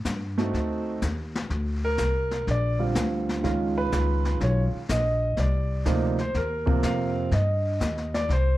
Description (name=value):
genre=jazz piano trio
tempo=124 BPM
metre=4/4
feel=swing 67% on 8ths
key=C minor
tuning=A4 = 440 Hz
part: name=upright bass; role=bass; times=0.0-8.6 s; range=Bb1 to G2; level=-26 LUFS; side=equal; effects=none
part: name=jazz brush drum kit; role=drums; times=0.0-8.6 s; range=brushed snare drum, hi-hat, kick drum, snare drum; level=-31 LUFS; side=left 2 dB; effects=none
part: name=warm grand piano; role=melody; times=0.4-8.6 s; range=C3 to F5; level=-26 LUFS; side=right 2 dB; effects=none
room=light reverb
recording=dark, warm production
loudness=-23 LUFS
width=side -16 dB against mid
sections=0.0-8.6 A section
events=grand piano solo 0.0-8.6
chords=0.0 Am7b5; 0.5 D7b9; 1.5 Gm7; 3.4 Db9; 5.4 Cm9